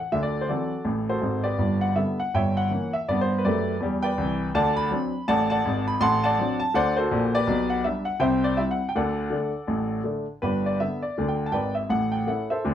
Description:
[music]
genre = jazz, stride piano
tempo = 163 BPM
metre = 4/4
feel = swing 61% on 8ths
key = G major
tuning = A4 = 439 Hz
[part]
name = clear grand piano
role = solo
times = 0.0-12.7 s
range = G1 to C6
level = -22 LUFS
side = equal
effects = none
[sound]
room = wet small room reverb, RT60 0.5 s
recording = heard from further back in the room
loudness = -22 LUFS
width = side -10 dB against mid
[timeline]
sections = 0.0-10.4 A section; 10.4-12.7 B section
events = none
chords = 0.1 D9; 1.6 G; 2.3 Gdim7; 3.1 G; 4.5 D7; 6.0 D7/A; 7.5 G/B; 8.2 C; 8.9 D; 10.4 G; 11.9 A

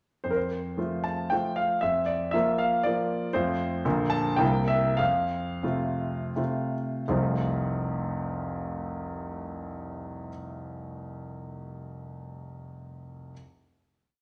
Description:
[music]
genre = classical, romantic triple-time dance for piano with dotted rhythms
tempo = 80-125 BPM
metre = 3/4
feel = rubato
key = F major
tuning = A4 = 440 Hz
[part]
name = warm concert grand piano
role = solo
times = 0.2-13.3 s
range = F1 to A5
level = -29 LUFS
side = equal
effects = none
[sound]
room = wet stone room reverb, RT60 1.0 s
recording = none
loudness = -28 LUFS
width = mono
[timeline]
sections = 0.2-7.1 A section; 7.1-11.2 final chord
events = slowing down 2.6-7.1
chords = 0.2 F; 1.8 Bb/F; 3.3 F; 3.9 Bb; 4.4 C7; 5.0 F

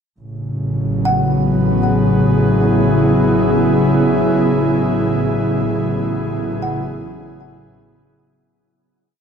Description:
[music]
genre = ambient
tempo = 58 BPM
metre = 4/4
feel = straight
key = A major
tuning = A4 = 442 Hz
[part]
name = airy breathy pad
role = sustained chords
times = 0.2-8.5 s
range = C#3 to G#4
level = -15 LUFS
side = equal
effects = chorus
[part]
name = clear chamber double bass section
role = bass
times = 0.2-8.4 s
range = A1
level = -22 LUFS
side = equal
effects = none
[part]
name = kalimba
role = arpeggios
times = 1.1-8.6 s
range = F#5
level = -25 LUFS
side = equal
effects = ping-pong delay
[sound]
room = wet huge ambient reverb, RT60 8.2 s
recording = lossy compression artefacts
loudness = -14 LUFS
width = side -7 dB against mid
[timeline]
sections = 0.2-8.5 A section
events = filter sweep on analog synth pad 0.2-8.5; fade-out 4.3-8.5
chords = 0.2 Aadd9

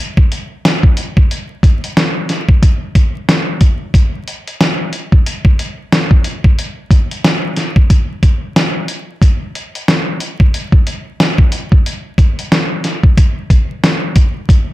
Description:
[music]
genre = hip hop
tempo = 91 BPM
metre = 4/4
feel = swing 58% on 16ths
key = none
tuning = none
[part]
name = dusty soul sampler-style drum kit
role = drums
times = 0.2-14.7 s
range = hi-hat, kick drum, snare drum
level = -11 LUFS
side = equal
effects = none
[sound]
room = light reverb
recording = vinyl crackle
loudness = -11 LUFS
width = side -17 dB against mid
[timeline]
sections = 0.0-14.5 A section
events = none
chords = none

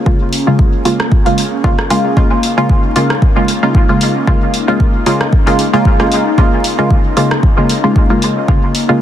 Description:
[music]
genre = dub techno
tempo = 114 BPM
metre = 4/4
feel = swing 55% on 16ths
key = Bb minor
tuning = A4 = 440 Hz
[part]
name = airy breathy pad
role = sustained chords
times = 0.0-9.0 s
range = Bb3 to Ab4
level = -20 LUFS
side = left 1 dB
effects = chorus, phaser, sidechain pumping
[part]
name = filtered dub chord stab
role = stabs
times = 0.1-9.0 s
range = Db3 to F4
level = -13 LUFS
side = equal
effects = chorus, phaser, sidechain pumping, dub echo
[part]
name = electronic kick drum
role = drums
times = 0.1-8.6 s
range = none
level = -12 LUFS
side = equal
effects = none
[part]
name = deep house drum kit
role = drums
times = 0.3-8.9 s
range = hi-hat, rim click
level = -20 LUFS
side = equal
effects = soft clipping on snare
[sound]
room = light reverb, digital ambience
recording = dense, heavily limited modern master, vinyl crackle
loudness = -10 LUFS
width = side -11 dB against mid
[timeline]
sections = 0.0-9.0 A section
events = none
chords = 0.0 Bbm7

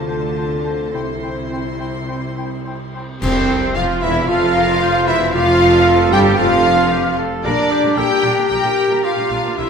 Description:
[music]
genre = classical, dramatic, fast romantic movement for symphony orchestra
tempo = 104-116 BPM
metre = 4/4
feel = rubato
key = F major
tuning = A4 = 440 Hz
[part]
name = rich symphonic violin section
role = melody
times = 0.0-9.7 s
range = C5 to C6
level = -23 LUFS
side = left 2 dB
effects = none
[part]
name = clear symphonic violin section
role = second line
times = 0.0-9.7 s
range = C4 to C5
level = -26 LUFS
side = left 2 dB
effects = none
[part]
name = rich symphonic viola section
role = accompaniment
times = 0.0-9.7 s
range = C3 to F4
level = -25 LUFS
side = right 2 dB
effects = none
[part]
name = mellow French horn section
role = sustained chords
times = 0.0-9.7 s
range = C4 to G4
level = -20 LUFS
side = equal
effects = none
[part]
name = concert harp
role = arpeggios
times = 0.0-9.7 s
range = F2 to A4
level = -28 LUFS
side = left 4 dB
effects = none
[part]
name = clear symphonic double bass section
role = bass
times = 0.0-9.6 s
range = E1 to D2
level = -26 LUFS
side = right 2 dB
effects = none
[part]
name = rich symphonic cello section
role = bass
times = 0.0-9.6 s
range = C2 to D3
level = -25 LUFS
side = right 2 dB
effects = none
[part]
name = silver concert flute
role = second line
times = 0.1-9.7 s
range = C5 to C6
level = -24 LUFS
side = left 1 dB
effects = none
[part]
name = warm clarinet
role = second line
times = 0.1-9.7 s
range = C4 to G4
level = -26 LUFS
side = equal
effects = none
[part]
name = warm oboe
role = second line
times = 0.1-9.7 s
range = D4 to C5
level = -27 LUFS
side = equal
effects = none
[part]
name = warm trumpet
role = stabs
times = 3.2-9.7 s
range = C4 to G4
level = -21 LUFS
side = right 2 dB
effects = none
[part]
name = clash cymbals and concert bass drum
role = percussion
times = 3.2-4.2 s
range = none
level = -30 LUFS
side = left 1 dB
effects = none
[part]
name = timpani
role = percussion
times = 3.2-4.0 s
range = F2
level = -28 LUFS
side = left 1 dB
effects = none
[sound]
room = wet scoring stage reverb, RT60 1.6 s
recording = minimal, uncompressed stereo recording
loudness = -14 LUFS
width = side -6 dB against mid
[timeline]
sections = 0.0-3.2 A section; 3.2-9.7 B section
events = band accent 3.2-3.8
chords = 0.0 Dm7; 0.9 C; 3.2 F5; 5.3 G5/F; 7.4 Gm/Bb

